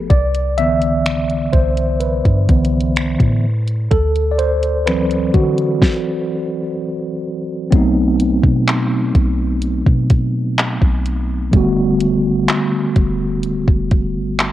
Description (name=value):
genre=contemporary R&B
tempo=63 BPM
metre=4/4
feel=straight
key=unclear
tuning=A4 = 440 Hz
part: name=mellow tine electric piano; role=accompaniment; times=0.0-14.5 s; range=D3 to E5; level=-17 LUFS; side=equal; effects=medium stereo tremolo
part: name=soft 808-style bass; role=bass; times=0.0-14.5 s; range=D1 to D3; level=-19 LUFS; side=equal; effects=none
part: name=smooth R&B drum kit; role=drums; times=0.1-14.5 s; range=finger snaps, handclaps, hi-hat, kick drum, snare drum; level=-15 LUFS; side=equal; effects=none
room=light reverb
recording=worn, warbling old tape, cassette tape, warbly pitch drift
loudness=-14 LUFS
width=side -13 dB against mid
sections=0.0-7.7 A section; 7.7-14.5 B section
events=tine electric piano solo 0.0-7.7; stop 5.8-7.7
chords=0.1 Cmaj9; 3.4 D9; 7.7 B7b9; 11.5 Em11